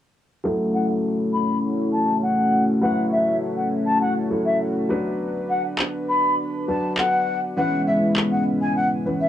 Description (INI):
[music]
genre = dance-pop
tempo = 101 BPM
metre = 4/4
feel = straight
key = F# minor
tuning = A4 = 441 Hz
[part]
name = warm grand piano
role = accompaniment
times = 0.4-9.3 s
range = E3 to B4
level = -27 LUFS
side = equal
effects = low-pass filter
[part]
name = chorused pulse-width pad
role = sustained chords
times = 0.4-9.3 s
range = G#3 to C#5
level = -23 LUFS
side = left 1 dB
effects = low-pass filter
[part]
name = mellow silver concert flute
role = melody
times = 0.7-9.3 s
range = E5 to B5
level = -23 LUFS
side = left 1 dB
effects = low-pass filter, cassette tape, tape echo
[part]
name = electronic handclaps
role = drums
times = 5.8-8.3 s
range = none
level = -22 LUFS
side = equal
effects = cassette tape
[sound]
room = wet booth ambience, RT60 0.2 s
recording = home recording on cassette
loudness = -19 LUFS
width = side -11 dB against mid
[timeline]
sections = 0.4-9.3 A section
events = filter sweep 0.4-9.3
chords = 0.4 F#m7; 4.9 Bm; 7.6 C#m7